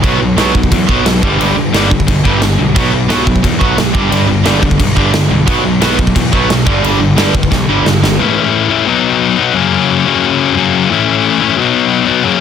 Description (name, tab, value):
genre	punk rock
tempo	177 BPM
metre	4/4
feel	straight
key	unclear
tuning	A4 = 438 Hz
part	distorted electric guitar	riff	0.0-12.4 s	F#2 to E4	-12 LUFS	left 8 dB	distortion
part	overdriven semi-hollow guitar	riff	0.0-8.2 s	G2 to B3	-16 LUFS	right 12 dB	none
part	fuzz picked electric bass	bass	0.0-8.2 s	G1 to E2	-17 LUFS	right 1 dB	overdrive
part	big rock drum kit	drums	0.0-8.1 s	crash cymbal, kick drum, snare drum	-14 LUFS	right 1 dB	none
room	light reverb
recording	dense, heavily limited modern master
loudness	-9 LUFS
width	side -8 dB against mid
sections	0.0-8.2 A section; 8.2-12.4 B section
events	drum fill 7.5-8.2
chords	0.0 B5; 1.2 G; 2.8 B5; 3.9 G; 5.5 B5; 6.7 G5; 8.2 A; 8.9 B; 9.5 F#; 10.9 A; 11.6 B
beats	| 0.03 0.37 0.71 1.05 | 1.40 1.74 2.08 2.42 | 2.75 3.10 3.44 3.77 | 4.12 4.46 4.79 5.13 | 5.47 5.81 6.15 6.49 | 6.83 7.17 7.51 7.85 | 8.19 8.53 8.87 9.20 | 9.54 9.88 10.22 10.56 | 10.90 11.23 11.57 11.91 | 12.25